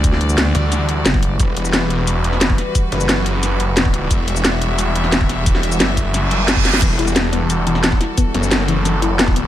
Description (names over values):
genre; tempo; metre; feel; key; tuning
dark technical drum and bass; 177 BPM; 4/4; straight; E minor; A4 = 441 Hz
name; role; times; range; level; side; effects
rich chamber string section; sustained chords; 0.0-9.5 s; E3 to E5; -23 LUFS; left 1 dB; sidechain pumping
growling FM bass; bass; 0.0-1.4 s; F#1 to D2; -17 LUFS; equal; none
drum and bass drum kit; drums; 0.0-9.4 s; cabasa, crash cymbal, hi-hat, snare drum; -19 LUFS; equal; none
electronic kick drum; drums; 0.0-9.3 s; none; -17 LUFS; equal; none
snarling distorted saw bass; bass; 0.5-9.5 s; E1 to D2; -18 LUFS; equal; overdrive, sidechain pumping
reverse cymbal; sound effects; 6.2-6.8 s; none; -22 LUFS; right 5 dB; none
soft round pluck; arpeggios; 6.8-9.5 s; E3 to E4; -22 LUFS; left 5 dB; chorus, sidechain pumping, tape echo
room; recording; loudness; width
little or no reverb; none; -14 LUFS; side -12 dB against mid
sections
0.0-9.5 A section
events
reverse cymbal 6.2-6.8; drum fill 6.7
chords
0.0 Emadd9